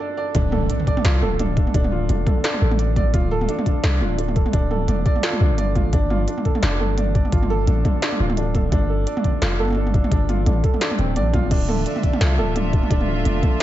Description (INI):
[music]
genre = half-time drum and bass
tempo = 172 BPM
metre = 4/4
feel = swing 57% on 16ths, half-time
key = unclear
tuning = A4 = 440 Hz
[part]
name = felt-muted upright piano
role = arpeggios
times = 0.0-13.6 s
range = C4 to D5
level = -25 LUFS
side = right 2 dB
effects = dub echo
[part]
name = long sustained 808-style bass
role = bass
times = 0.3-13.4 s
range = D1 to C2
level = -21 LUFS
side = equal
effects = none
[part]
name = electronic kick drum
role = drums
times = 0.3-13.5 s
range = none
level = -19 LUFS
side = equal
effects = overdrive
[part]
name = industrial drum kit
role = drums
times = 0.3-13.6 s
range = crash cymbal, hi-hat, snare drum, toms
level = -25 LUFS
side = right 1 dB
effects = none
[part]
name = impact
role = sound effects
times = 0.3-1.7 s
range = none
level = -28 LUFS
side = equal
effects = none
[part]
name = dark studio string section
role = sustained chords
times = 11.5-13.6 s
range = D3 to E5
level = -29 LUFS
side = equal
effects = sidechain pumping
[sound]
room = digital ambience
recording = nothing above 7.8 kHz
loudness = -17 LUFS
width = side -13 dB against mid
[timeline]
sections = 0.3-13.6 A section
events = break 0.0-0.3; drop 0.3-13.6; impact 0.3-1.7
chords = 0.3 Dm; 5.9 Gsus2; 11.5 Dmadd9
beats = 0.00 | 0.35 0.70 1.04 1.39 | 1.74 2.09 2.44 2.79 | 3.14 3.49 3.84 4.18 | 4.53 4.88 5.23 5.58 | 5.93 6.28 6.63 6.97 | 7.32 7.67 8.02 8.37 | 8.72 9.07 9.42 9.77 | 10.12 10.46 10.81 11.16 | 11.51 11.86 12.21 12.56 | 12.90 13.25 13.60